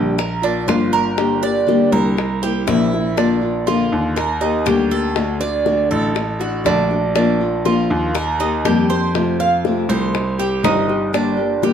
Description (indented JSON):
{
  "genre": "latin, Cuban son and guajira",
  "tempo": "120 BPM",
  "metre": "4/4",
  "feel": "straight",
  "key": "unclear",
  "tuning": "A4 = 440 Hz",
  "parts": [
    { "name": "nylon-string guitar", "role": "accompaniment", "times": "0.0-11.7 s", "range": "C3 to G4", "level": "-19 LUFS", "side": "left 4 dB", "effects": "none" },
    { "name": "Cuban tres", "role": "arpeggios", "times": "0.0-11.7 s", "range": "D4 to F5", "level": "-20 LUFS", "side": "right 6 dB", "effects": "none" },
    { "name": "clear grand piano", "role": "bass", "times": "0.0-11.7 s", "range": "G1 to F2", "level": "-22 LUFS", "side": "right 1 dB", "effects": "none" },
    { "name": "bongos", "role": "percussion", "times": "0.2-11.7 s", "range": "none", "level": "-25 LUFS", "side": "left 6 dB", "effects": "none" }
  ],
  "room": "moderate studio reverb, RT60 0.9 s",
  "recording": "dark, warm production",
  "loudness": "-15 LUFS",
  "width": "side -8 dB against mid",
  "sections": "0.0-11.7 A section",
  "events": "none",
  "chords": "0.2 Bb; 1.2 Gm; 2.2 C7; 3.2 Bb; 4.2 Eb; 5.2 D; 7.2 Bb; 8.2 Eb; 9.1 F; 10.1 Cm; 11.1 Gm"
}